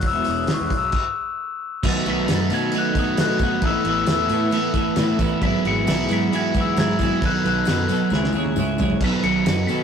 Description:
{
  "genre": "indie rock",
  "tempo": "134 BPM",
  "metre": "4/4",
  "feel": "straight",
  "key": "unclear",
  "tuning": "A4 = 440 Hz",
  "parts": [
    { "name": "dark analog pad", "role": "sustained chords", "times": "0.0-9.8 s", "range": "G#4 to C#6", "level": "-33 LUFS", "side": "left 1 dB", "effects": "chorus" },
    { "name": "twelve-string electric guitar", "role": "riff", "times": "0.0-9.8 s", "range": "E2 to A4", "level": "-26 LUFS", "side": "equal", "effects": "none" },
    { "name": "twelve-string electric guitar", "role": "riff", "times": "0.0-9.8 s", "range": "E2 to A4", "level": "-24 LUFS", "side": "right 4 dB", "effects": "none" },
    { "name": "fuzz picked electric bass", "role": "bass", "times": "0.0-9.8 s", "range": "E1 to B2", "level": "-26 LUFS", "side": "equal", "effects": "overdrive" },
    { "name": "cloth-damped thuddy drum kit", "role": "drums", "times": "0.0-9.8 s", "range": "crash cymbal, hi-hat, kick drum, snare drum, toms", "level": "-24 LUFS", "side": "equal", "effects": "none" },
    { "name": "glockenspiel with rubber mallets", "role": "melody", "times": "0.1-9.8 s", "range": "C#6 to C#7", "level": "-25 LUFS", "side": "left 6 dB", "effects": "none" },
    { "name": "tambourine", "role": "percussion", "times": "2.3-9.8 s", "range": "none", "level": "-43 LUFS", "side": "left 5 dB", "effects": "none" }
  ],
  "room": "moderate stone room reverb, RT60 1.1 s",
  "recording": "rough rehearsal-room recording, tube saturation",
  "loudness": "-18 LUFS",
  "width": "side -7 dB against mid",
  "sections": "0.0-1.8 A section; 1.8-9.8 B section",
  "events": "stop 0.9-1.8; drum fill 8.1-9.0",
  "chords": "0.0 E6; 0.7 B7sus4; 1.8 B7; 3.6 Asus2; 5.4 Eadd9/G#; 7.2 B7; 8.1 C#m; 9.0 B7"
}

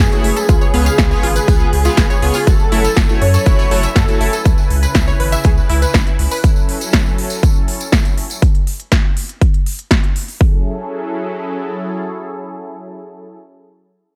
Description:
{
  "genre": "progressive house",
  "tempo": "121 BPM",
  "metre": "4/4",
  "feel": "straight",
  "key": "F# minor",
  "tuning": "A4 = 441 Hz",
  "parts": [
    { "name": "unison lead", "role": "melody", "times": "0.0-4.5 s", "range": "G#4 to C#5", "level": "-23 LUFS", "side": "equal", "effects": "sidechain pumping, tape echo" },
    { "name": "airy dreamy lead", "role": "second line", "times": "0.0-4.5 s", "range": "G#4 to C#5", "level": "-32 LUFS", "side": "equal", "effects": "none" },
    { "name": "filtered supersaw swell", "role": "sustained chords", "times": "0.0-13.4 s", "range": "C#3 to G#5", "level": "-27 LUFS", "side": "equal", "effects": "sidechain pumping" },
    { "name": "round analog bass", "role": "bass", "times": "0.0-6.3 s", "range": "F#1 to F#2", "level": "-19 LUFS", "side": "equal", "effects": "sidechain pumping" },
    { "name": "drifting glass-harmonics texture", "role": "texture", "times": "0.2-6.4 s", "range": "B4 to B5", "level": "-37 LUFS", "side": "equal", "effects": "none" },
    { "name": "chorused polysynth", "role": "stabs", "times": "0.1-4.3 s", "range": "A3 to E#5", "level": "-25 LUFS", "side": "equal", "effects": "sidechain pumping, dub echo" },
    { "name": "big-room dance drum kit", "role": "drums", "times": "0.1-10.4 s", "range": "hi-hat, snare drum", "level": "-23 LUFS", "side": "equal", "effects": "sidechain pumping on hats" },
    { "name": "tambourine", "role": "percussion", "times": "0.1-8.4 s", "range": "none", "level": "-31 LUFS", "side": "equal", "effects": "none" },
    { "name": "unison pluck", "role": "arpeggios", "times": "0.4-6.4 s", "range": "E4 to E#5", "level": "-26 LUFS", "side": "equal", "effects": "lush chorus, sidechain pumping, dub echo" },
    { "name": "electronic kick drum", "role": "drums", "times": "0.5-10.5 s", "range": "none", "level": "-16 LUFS", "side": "equal", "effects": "none" }
  ],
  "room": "digital ambience",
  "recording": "none",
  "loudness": "-15 LUFS",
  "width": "mono",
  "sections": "0.0-10.4 A section; 10.4-14.2 B section",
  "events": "drop 0.0-10.4",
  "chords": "0.5 C#7; 2.5 F#m7; 4.5 C#m7; 6.4 F#m7; 8.4 N.C.; 10.4 F#m7"
}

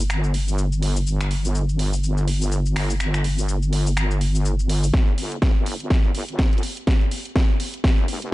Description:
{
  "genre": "bass house",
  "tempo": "124 BPM",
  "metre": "4/4",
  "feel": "swing 58% on 16ths",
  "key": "unclear",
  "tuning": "A4 = 440 Hz",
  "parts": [
    { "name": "wobble bass", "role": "bass", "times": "0.0-8.3 s", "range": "F1 to G1", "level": "-22 LUFS", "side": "equal", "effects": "chorus, tube saturation, sidechain pumping, high-pass filter" },
    { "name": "house drum kit", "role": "drums", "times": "0.0-8.3 s", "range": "finger snaps, hi-hat, shaker, snare drum", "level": "-28 LUFS", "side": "left 1 dB", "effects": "overdrive" },
    { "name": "electronic kick drum", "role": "drums", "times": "4.9-8.0 s", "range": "none", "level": "-18 LUFS", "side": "equal", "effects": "overdrive" }
  ],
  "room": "little or no reverb",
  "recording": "dark, warm production, nothing above 10.7 kHz",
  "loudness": "-19 LUFS",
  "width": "side -18 dB against mid",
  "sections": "0.0-4.9 A section; 4.9-8.3 B section",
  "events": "build-up 4.9-8.3; drum fill 4.9-8.3",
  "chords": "none"
}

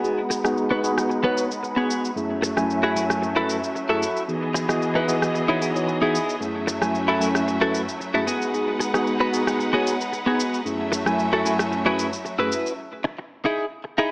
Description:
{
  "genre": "nu-disco, nu disco",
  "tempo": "113 BPM",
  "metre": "4/4",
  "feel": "swing 53% on 16ths",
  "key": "F# dorian",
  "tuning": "A4 = 441 Hz",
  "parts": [
    { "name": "tine electric piano", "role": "accompaniment", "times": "0.0-12.5 s", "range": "F#2 to G#5", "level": "-24 LUFS", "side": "equal", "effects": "medium stereo tremolo, low-pass filter, digital delay" },
    { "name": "bright symphonic string section", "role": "sustained chords", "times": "0.0-12.8 s", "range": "E3 to F#5", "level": "-28 LUFS", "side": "equal", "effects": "low-pass filter" },
    { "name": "direct-recorded clean electric guitar", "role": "riff", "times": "0.0-14.1 s", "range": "B3 to B4", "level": "-24 LUFS", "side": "equal", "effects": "analog chorus, low-pass filter" },
    { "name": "electronic shaker and rim click", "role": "drums", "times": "0.0-12.8 s", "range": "none", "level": "-29 LUFS", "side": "equal", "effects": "none" }
  ],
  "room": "moderate echo chamber reverb, RT60 2.1 s",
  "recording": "small speaker sound",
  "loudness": "-20 LUFS",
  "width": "side -27 dB against mid",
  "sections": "0.0-14.1 A section",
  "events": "filter sweep on tine electric piano 0.0-14.1; filter sweep on string section 0.0-14.1; break 12.8-14.1",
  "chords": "0.0 G#m7; 2.2 F#m7; 4.3 Emaj7; 6.4 F#m7; 8.3 G#m7; 10.7 F#m7; 12.8 Emaj7"
}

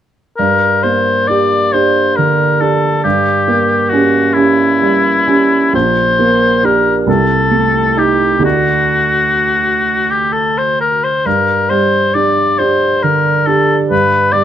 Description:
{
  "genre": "classical, romantic duo for oboe and grand piano",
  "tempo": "44 BPM (dotted quarters)",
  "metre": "6/8",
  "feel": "uneven beats, rubato",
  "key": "G minor",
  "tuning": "A4 = 445 Hz",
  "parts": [
    { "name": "warm oboe", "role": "melody", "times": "0.4-14.4 s", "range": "E4 to D5", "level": "-12 LUFS", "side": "left 3 dB", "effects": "none" },
    { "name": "clear baby grand piano", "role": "accompaniment", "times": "0.4-14.4 s", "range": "Bb1 to G4", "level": "-14 LUFS", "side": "right 4 dB", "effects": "none" }
  ],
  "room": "moderate large studio reverb, RT60 1.0 s",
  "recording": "dark, warm production",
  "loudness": "-10 LUFS",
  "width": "side -10 dB against mid",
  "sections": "0.4-14.4 A section",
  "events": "none",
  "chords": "0.4 Gm; 3.0 Gdim7; 5.7 Gm/Bb; 7.1 Am7b5/C; 8.4 D; 11.3 G5"
}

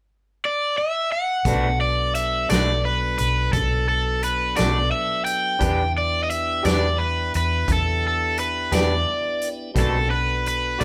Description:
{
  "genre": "slow blues",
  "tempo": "58 BPM (dotted quarters)",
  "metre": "12/8",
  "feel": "straight",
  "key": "B minor",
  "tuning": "A4 = 440 Hz",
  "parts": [
    { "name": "cranked stack guitar", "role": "melody", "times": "0.5-10.8 s", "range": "A4 to G5", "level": "-25 LUFS", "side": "equal", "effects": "overdrive" },
    { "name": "electric guitar through a small old amp", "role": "accompaniment", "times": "1.5-10.8 s", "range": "B2 to G4", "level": "-29 LUFS", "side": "equal", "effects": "harmonic tremolo" },
    { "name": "tonewheel organ", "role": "sustained chords", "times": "1.5-10.8 s", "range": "F#3 to A4", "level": "-35 LUFS", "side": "equal", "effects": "slow rotary speaker, overdrive" },
    { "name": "vintage muted fingered electric bass", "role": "bass", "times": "1.5-10.8 s", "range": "B1 to E2", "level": "-27 LUFS", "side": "equal", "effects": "none" },
    { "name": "natural country drum kit", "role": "drums", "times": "1.5-10.8 s", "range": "hi-hat, kick drum, snare drum", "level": "-28 LUFS", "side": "equal", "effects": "none" }
  ],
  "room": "moderate large studio reverb, RT60 1.1 s",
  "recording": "band playing live in one room, faint mains hum",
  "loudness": "-22 LUFS",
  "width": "mono",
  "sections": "0.0-1.5 A section; 1.5-10.8 B section",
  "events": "none",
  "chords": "0.0 N.C.; 1.5 Bm7; 5.6 Em7; 9.8 Bm7"
}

